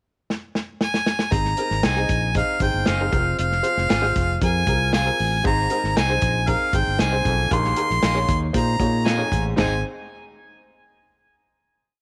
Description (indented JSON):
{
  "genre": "uptempo 1960s-style soul",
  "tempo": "116 BPM",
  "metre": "4/4",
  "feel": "straight",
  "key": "Ab major",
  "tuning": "A4 = 439 Hz",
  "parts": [
    { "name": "warm soul drum kit", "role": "drums", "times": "0.3-9.7 s", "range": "hi-hat, kick drum, snare drum, splash cymbal, toms", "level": "-27 LUFS", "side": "equal", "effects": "none" },
    { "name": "clear harmonica", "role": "melody", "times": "0.8-9.8 s", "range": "F5 to C6", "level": "-26 LUFS", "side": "equal", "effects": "tape echo" },
    { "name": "clear upright piano", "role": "accompaniment", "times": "1.3-9.8 s", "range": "Bb3 to Eb5", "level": "-30 LUFS", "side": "equal", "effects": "none" },
    { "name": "fingered electric bass", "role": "bass", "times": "1.3-9.8 s", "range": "F1 to Bb2", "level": "-26 LUFS", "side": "equal", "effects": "none" },
    { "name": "electric guitar at the edge of break-up", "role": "stabs", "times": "1.8-9.7 s", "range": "Bb3 to Ab4", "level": "-34 LUFS", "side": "equal", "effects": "spring reverb" },
    { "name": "warm baritone saxophone", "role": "riff", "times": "5.4-9.8 s", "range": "Eb2 to Ab2", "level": "-34 LUFS", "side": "equal", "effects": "none" }
  ],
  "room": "studio ambience",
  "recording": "none",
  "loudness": "-21 LUFS",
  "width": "mono",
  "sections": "0.0-1.3 pickup bar; 1.3-9.6 A section; 9.6-11.6 final chord",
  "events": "drum fill 0.3-1.3",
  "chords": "0.0 N.C.; 1.3 Ab; 3.1 Fm; 5.4 Ab; 7.5 Ebsus4/Bb; 9.6 Ab"
}